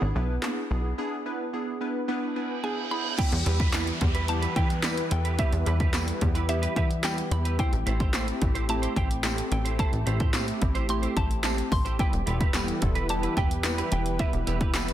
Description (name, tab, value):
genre	dance-pop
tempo	109 BPM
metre	4/4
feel	straight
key	unclear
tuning	A4 = 440 Hz
part	glassy digital keys	accompaniment	0.0-14.9 s	G3 to G#5	-32 LUFS	right 1 dB	chorus, sidechain pumping
part	plucky analog bass	bass	0.0-14.9 s	E1 to E2	-28 LUFS	equal	sidechain pumping
part	punchy analog drum machine	drums	0.4-14.9 s	crash cymbal, handclaps, hi-hat, kick drum, snare drum	-28 LUFS	equal	none
part	reverse cymbal and downlifter	sound effects	2.4-7.6 s	none	-36 LUFS	right 2 dB	none
part	mallet-like synth pluck	melody	2.6-14.9 s	E5 to C6	-35 LUFS	equal	chorus, dub echo
part	warm analog pad	sustained chords	3.8-14.9 s	E3 to B4	-35 LUFS	equal	chorus, sidechain pumping
part	clean electric guitar	riff	3.2-14.9 s	E4 to C5	-35 LUFS	right 7 dB	ensemble chorus
part	tambourine	percussion	3.7-14.9 s	none	-39 LUFS	left 9 dB	none
room	light reverb, digital ambience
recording	dense, heavily limited modern master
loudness	-24 LUFS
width	side -12 dB against mid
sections	0.0-3.2 A section; 3.2-14.9 B section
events	break 1.0-3.2; synth keys fill 2.1-3.2; reverse cymbal 2.4-3.2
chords	0.0 E7/G#; 3.2 Em; 7.6 Am7; 12.0 Em